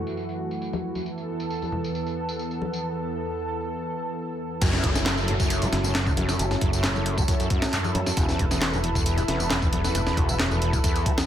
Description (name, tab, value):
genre	breakbeat, breaks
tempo	135 BPM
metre	4/4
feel	straight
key	F# minor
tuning	A4 = 441 Hz
part	lush unison pad	sustained chords	0.0-11.3 s	E2 to B4	-29 LUFS	right 1 dB	chorus, sidechain pumping
part	electronic tambourine and handclaps	drums	0.1-11.3 s	none	-33 LUFS	equal	low-pass filter on perc, low-pass filter on snare, low-pass filter on room
part	congas	percussion	0.7-10.6 s	none	-35 LUFS	left 4 dB	none
part	overdriven acid bass	riff	4.6-11.2 s	E2 to A3	-28 LUFS	equal	distortion, analog chorus, tape echo
part	fingered electric bass	bass	4.6-10.8 s	E1 to F#2	-28 LUFS	equal	none
part	breakbeat sampler-style drum kit	drums	4.6-11.3 s	crash cymbal, hi-hat, kick drum, snare drum	-25 LUFS	equal	none
part	downlifter	sound effects	4.6-8.2 s	none	-34 LUFS	equal	none
room	light reverb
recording	low-pass filter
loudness	-23 LUFS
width	side -10 dB against mid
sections	0.0-4.6 A section; 4.6-11.3 B section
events	drop 4.6-11.3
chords	0.0 F#m7; 1.1 Esus4; 4.6 F#m7; 8.2 Esus4